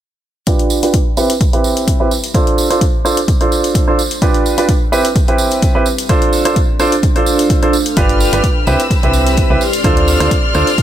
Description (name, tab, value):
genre	piano house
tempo	128 BPM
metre	4/4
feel	swing 54% on 16ths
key	D dorian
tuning	A4 = 442 Hz
part	clear grand piano	riff	0.5-10.7 s	C4 to C5	-15 LUFS	right 2 dB	sidechain pumping, low-pass filter, dub echo
part	electronic hi-hat	drums	0.5-10.8 s	none	-24 LUFS	left 6 dB	none
part	electronic kick drum	drums	0.5-10.8 s	none	-15 LUFS	equal	none
part	tambourine	percussion	0.5-10.8 s	none	-24 LUFS	right 6 dB	none
part	deep dark ambient pad	texture	1.4-10.8 s	C4 to F5	-25 LUFS	right 1 dB	chorus, built-in reverb, sidechain pumping
part	rich studio violin section	sustained chords	8.0-10.8 s	C4 to F6	-19 LUFS	left 2 dB	sidechain pumping
part	solid FM bass	bass	8.0-10.6 s	G1 to D2	-16 LUFS	equal	sidechain pumping
room	light reverb, studio reverb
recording	none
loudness	-11 LUFS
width	side -11 dB against mid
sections	0.5-10.8 A section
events	fade-in on ambient pad 0.5-10.8; filter sweep on grand piano 0.5-10.8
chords	0.5 G7; 1.2 Cmaj7; 2.1 Dm7; 4.2 G7; 4.9 Cmaj7; 5.9 Dm7; 8.0 G7; 8.7 Cmaj7; 9.6 Dm7